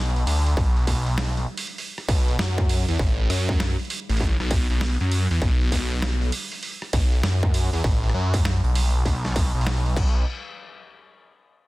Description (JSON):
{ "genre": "glitch hop", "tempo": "99 BPM", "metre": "4/4", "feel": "swing 64% on 16ths", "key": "B minor", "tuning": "A4 = 440 Hz", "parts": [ { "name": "phased detuned saw bass", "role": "bass", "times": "0.0-10.2 s", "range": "A1 to F#2", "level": "-22 LUFS", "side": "equal", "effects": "phaser" }, { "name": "boom bap sampler-style drum kit", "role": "drums", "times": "0.2-10.1 s", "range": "crash cymbal, hi-hat, rim click, snare drum", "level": "-31 LUFS", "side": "right 1 dB", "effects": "none" }, { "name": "electronic kick drum", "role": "drums", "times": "0.6-10.1 s", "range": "none", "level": "-23 LUFS", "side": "equal", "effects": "distortion" } ], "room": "little or no reverb", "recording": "dense, heavily limited modern master", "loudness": "-20 LUFS", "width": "side -19 dB against mid", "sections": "0.0-10.3 A section; 10.3-11.7 B section", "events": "drop 0.0-10.3", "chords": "none" }